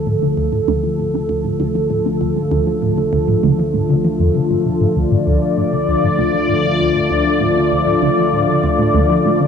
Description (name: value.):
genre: ambient, sequencer-driven space music.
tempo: 98 BPM.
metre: 4/4.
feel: straight.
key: D minor.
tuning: A4 = 440 Hz.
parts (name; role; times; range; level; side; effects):
sweeping resonant pad; sustained chords; 0.0-9.5 s; D3 to D5; -15 LUFS; left 1 dB; chorus.
analog drone; bass; 0.2-9.5 s; D2; -35 LUFS; equal; none.
resonant blip pluck; riff; 0.1-9.5 s; D2 to F3; -19 LUFS; right 1 dB; phaser, analog delay.
room: wet huge ambient reverb, RT60 7.9 s.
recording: cassette tape.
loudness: -14 LUFS.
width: side -7 dB against mid.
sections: 0.0-9.5 A section.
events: none.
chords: 0.0 Dm.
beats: | 0.07 0.68 1.29 1.90 | 2.52 3.13 3.74 4.35 | 4.96 5.58 6.19 6.80 | 7.41 8.03 8.64 9.25.